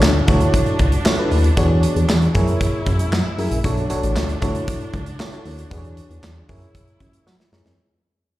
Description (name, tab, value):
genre	early-eighties boogie funk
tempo	116 BPM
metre	4/4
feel	straight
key	unclear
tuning	A4 = 441 Hz
part	FM electric piano	accompaniment	0.0-7.7 s	D4 to E5	-24 LUFS	equal	chorus, slapback echo
part	rich studio string section	sustained chords	0.0-7.8 s	A#2 to E4	-28 LUFS	right 1 dB	none
part	chorused synth bass	bass	0.0-7.8 s	A1 to F#3	-18 LUFS	equal	none
part	modern studio drum kit	drums	0.0-7.8 s	handclaps, hi-hat, kick drum, snare drum	-21 LUFS	equal	none
part	tambourine	percussion	0.0-7.4 s	none	-32 LUFS	right 3 dB	none
room	small room ambience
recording	live gig heard through the venue's PA, recital hall reverb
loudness	-16 LUFS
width	side -16 dB against mid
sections	0.0-7.8 A section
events	fade-out 0.0-7.8; drum fill 7.3-7.8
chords	0.3 Dmaj7; 1.6 E13; 2.4 F#9; 3.6 Bm9; 4.4 Dmaj7; 5.7 E13; 6.5 F#9